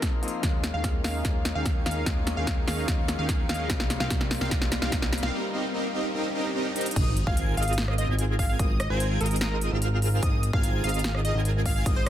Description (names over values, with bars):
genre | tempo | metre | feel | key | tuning
future bass | 147 BPM | 4/4 | half-time | Ab major | A4 = 439 Hz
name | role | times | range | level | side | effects
clear concert grand piano | accompaniment | 0.0-7.0 s | F3 to Ab4 | -36 LUFS | left 5 dB | sidechain pumping, tape echo
shimmering ambient pad | sustained chords | 0.0-5.3 s | Ab4 to Db6 | -44 LUFS | left 1 dB | none
big-room dance drum kit | drums | 0.0-12.1 s | crash cymbal, hi-hat, rim click, snare drum | -31 LUFS | equal | soft clipping on snare
electronic kick drum | drums | 0.0-11.9 s | none | -27 LUFS | equal | none
soft supersaw | riff | 0.4-12.0 s | C4 to Ab5 | -33 LUFS | right 2 dB | sidechain pumping, low-pass filter, tape echo
fat analog bass | bass | 0.4-12.1 s | Ab1 to Eb2 | -28 LUFS | equal | sidechain pumping
riser and sub drop | sound effects | 3.4-8.6 s | none | -37 LUFS | equal | none
plucky unison lead | melody | 0.7-12.1 s | Bb4 to F5 | -35 LUFS | equal | vintage 12-bit sampler grit, sidechain pumping, tape echo
airy dreamy lead | arpeggios | 7.0-12.0 s | Eb6 to Ab6 | -37 LUFS | equal | chorus, sidechain pumping
room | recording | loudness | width
little or no reverb | dense, heavily limited modern master | -24 LUFS | side -12 dB against mid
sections
0.0-7.0 A section; 7.0-12.1 B section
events
build-up 0.0-7.0; drum fill 0.0-5.3, 6.8; filter sweep on supersaw synth 0.0-7.0; riser 3.4-7.0; break 5.3-7.0; drop 7.0-12.1; impact 7.0-8.6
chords
0.4 Eb7sus4; 3.7 Cm7; 7.0 Ab69